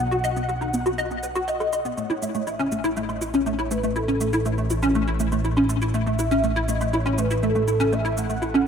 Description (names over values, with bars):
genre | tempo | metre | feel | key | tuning
ambient, sequencer-driven space music | 121 BPM | 4/4 | straight | A lydian | A4 = 440 Hz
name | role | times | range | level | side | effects
mellow horn-like synth lead | melody | 0.0-8.7 s | A4 to F#5 | -28 LUFS | equal | phaser, ensemble chorus, shimmer reverb, ping-pong delay
hollow square pluck | riff | 0.0-8.6 s | A3 to D#5 | -24 LUFS | equal | ensemble chorus, shimmer reverb, ping-pong delay
fat analog bass | bass | 0.0-8.7 s | A1 to B1 | -27 LUFS | equal | none
cabasa and woodblock | percussion | 0.1-8.6 s | none | -38 LUFS | right 1 dB | ping-pong delay
room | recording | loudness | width
moderate plate reverb, RT60 2.5 s | none | -21 LUFS | side -7 dB against mid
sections
0.0-8.7 A section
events
none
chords
0.0 B; 2.0 A